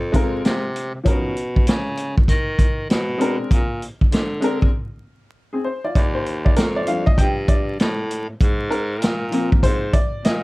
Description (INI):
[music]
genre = hip hop, jazz-hop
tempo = 98 BPM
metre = 4/4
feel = swing 63% on 16ths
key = Eb major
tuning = A4 = 440 Hz
[part]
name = breathy baritone saxophone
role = bass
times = 0.0-10.4 s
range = Eb2 to D#3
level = -25 LUFS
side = equal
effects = none
[part]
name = clear upright piano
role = accompaniment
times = 0.1-10.4 s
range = E#3 to G5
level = -23 LUFS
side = left 1 dB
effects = none
[part]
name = vintage drum kit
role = drums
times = 0.1-10.4 s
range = hi-hat, kick drum, snare drum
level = -18 LUFS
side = equal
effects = none
[sound]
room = light reverb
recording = dark, warm production, vinyl crackle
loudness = -17 LUFS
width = side -22 dB against mid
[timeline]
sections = 0.0-6.0 A section; 6.0-10.4 B section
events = break 4.7-6.0; upright piano solo 6.0-10.4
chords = 0.0 Ab69; 1.1 Bmaj9#11; 2.9 Bmmaj7; 3.5 Bb9; 6.0 Ebmaj9; 8.4 Ab69